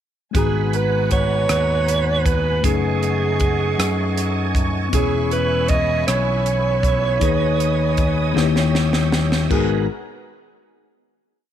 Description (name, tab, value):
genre	slow gospel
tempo	52 BPM (dotted quarters)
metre	6/8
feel	straight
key	G# minor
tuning	A4 = 442 Hz
part	mellow tine electric piano	accompaniment	0.3-9.9 s	G#1 to A#5	-24 LUFS	left 11 dB	medium stereo tremolo
part	bright tonewheel organ	sustained chords	0.3-9.9 s	G#3 to E5	-28 LUFS	right 10 dB	slow rotary speaker, overdrive, chorus vibrato
part	crisp fusion drum kit	drums	0.3-9.7 s	crash cymbal, hi-hat, kick drum, rim click, snare drum	-22 LUFS	right 1 dB	none
part	growling alto saxophone	melody	0.4-9.9 s	G#4 to D#5	-22 LUFS	right 4 dB	none
part	warm studio string section	sustained chords	0.4-9.9 s	B3 to D#6	-30 LUFS	left 2 dB	none
part	fingered electric bass	bass	0.4-9.9 s	E1 to F#2	-21 LUFS	equal	none
room	light reverb, small room ambience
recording	1960s-style stereo with parts hard left and right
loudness	-16 LUFS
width	side -10 dB against mid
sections	0.3-9.5 verse; 9.5-11.5 final chord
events	drum fill 8.4-9.5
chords	0.3 G#m9; 2.6 B13/F#; 4.9 E6; 7.2 G#m/D#; 8.4 D#7b9; 9.5 G#m9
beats	| 0.34 1.49 | 2.64 3.78 | 4.93 6.07 | 7.22 8.37 | 9.51